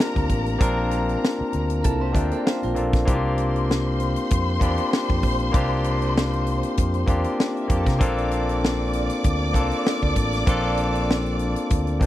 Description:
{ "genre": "lush 1970s-style soul", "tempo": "97 BPM", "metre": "4/4", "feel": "swing 54% on 16ths", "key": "unclear", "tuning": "A4 = 440 Hz", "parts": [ { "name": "warm studio string section", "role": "second line", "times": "0.0-12.1 s", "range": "D4 to D6", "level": "-30 LUFS", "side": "left 1 dB", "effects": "none" }, { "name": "barky tine electric piano", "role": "accompaniment", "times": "0.0-12.1 s", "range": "Bb3 to Bb5", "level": "-24 LUFS", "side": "left 2 dB", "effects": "overdrive" }, { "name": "tight funk drum kit", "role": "drums", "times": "0.0-12.1 s", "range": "hi-hat, kick drum, snare drum", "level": "-22 LUFS", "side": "equal", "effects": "none" }, { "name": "overdriven fingered electric bass", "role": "bass", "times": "0.2-12.1 s", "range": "A1 to C3", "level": "-25 LUFS", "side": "equal", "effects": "none" }, { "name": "electric guitar through a small old amp", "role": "riff", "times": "1.8-3.1 s", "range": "E4 to E5", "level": "-32 LUFS", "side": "right 6 dB", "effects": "spring reverb" } ], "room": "little or no reverb", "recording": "dry, close 1970s-style studio recording", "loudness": "-20 LUFS", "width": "side -14 dB against mid", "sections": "0.0-12.1 A section", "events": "tine electric piano fill 1.2-3.1", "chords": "0.0 Bbmaj9; 3.1 C7sus4; 8.0 Bbmaj9", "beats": "| 0.61 1.22 1.84 2.46 | 3.08 3.69 4.31 4.92 | 5.54 6.16 6.77 7.39 | 8.01 8.62 9.24 9.85 | 10.47 11.09 11.70" }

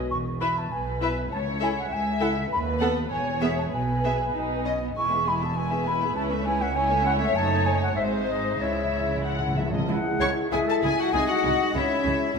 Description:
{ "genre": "quick classical-period movement for symphony orchestra", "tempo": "92-102 BPM", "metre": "2/4", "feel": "rubato", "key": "E major, C# minor from 7.3 s", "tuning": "A4 = 442 Hz", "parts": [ { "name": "concert flute", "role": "second line", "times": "0.1-12.4 s", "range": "C#5 to C#6", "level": "-28 LUFS", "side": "equal", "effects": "none" }, { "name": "warm chamber double bass section", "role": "bass", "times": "0.1-12.4 s", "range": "E1 to D#2", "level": "-32 LUFS", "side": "right 3 dB", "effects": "none" }, { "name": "warm studio cello section", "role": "bass", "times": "0.1-12.4 s", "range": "C#2 to C#3", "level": "-33 LUFS", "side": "right 1 dB", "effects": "none" }, { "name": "warm studio violin section", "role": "melody", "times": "0.4-12.4 s", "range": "B#4 to C#6", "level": "-32 LUFS", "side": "left 5 dB", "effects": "none" }, { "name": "warm studio viola section", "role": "accompaniment", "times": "0.4-12.4 s", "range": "G#3 to B4", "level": "-31 LUFS", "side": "right 2 dB", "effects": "none" }, { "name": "dark studio violin section", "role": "second line", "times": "0.7-12.3 s", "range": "E4 to F#5", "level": "-30 LUFS", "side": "left 4 dB", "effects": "none" }, { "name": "timpani", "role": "percussion", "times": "1.3-2.2, 8.6-9.9 s", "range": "C#3", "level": "-32 LUFS", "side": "equal", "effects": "none" }, { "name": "dark French horn section", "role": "sustained chords", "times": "9.9-12.4 s", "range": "G#3 to E4", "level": "-28 LUFS", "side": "left 2 dB", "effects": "none" }, { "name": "clear clarinet", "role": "second line", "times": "10.2-12.3 s", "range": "E4 to C#5", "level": "-32 LUFS", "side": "left 1 dB", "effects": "none" } ], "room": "wet scoring stage reverb, RT60 1.9 s", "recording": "minimal, uncompressed stereo recording", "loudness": "-22 LUFS", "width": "side -5 dB against mid", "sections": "0.1-9.9 A section; 9.9-12.4 B section", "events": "timpani fill 8.6-9.9", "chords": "0.1 E5; 1.3 A/C#; 2.5 B7/D#; 3.1 E; 3.7 E/B; 4.3 B; 5.0 E; 6.2 A/C#; 7.3 D#m7b5/F#; 8.0 G#; 8.6 C#m; 11.1 G#7; 11.8 C#m", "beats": "| 0.11 0.72 | 1.32 1.92 | 2.51 3.11 | 3.72 4.35 | 4.97 5.57 | 6.16 6.75 | 7.34 7.96 | 8.61 9.25 | 9.89 10.52 | 11.14 11.75 | 12.36" }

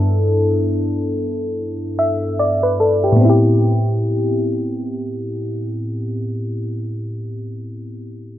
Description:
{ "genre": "R&B", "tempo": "74 BPM", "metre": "4/4", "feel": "swing 58% on 16ths", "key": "A minor", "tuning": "A4 = 440 Hz", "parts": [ { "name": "mellow FM electric piano", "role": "accompaniment", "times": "0.0-8.4 s", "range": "G2 to E5", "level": "-17 LUFS", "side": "equal", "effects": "chorus, low-pass filter" } ], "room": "light reverb, digital ambience", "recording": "none", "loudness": "-16 LUFS", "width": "side -12 dB against mid", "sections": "0.0-3.2 A section; 3.2-6.4 B section", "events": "none", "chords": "0.0 G69; 3.2 Am7", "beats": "0.76 1.57 2.39 | 3.20 4.01 4.82 5.63" }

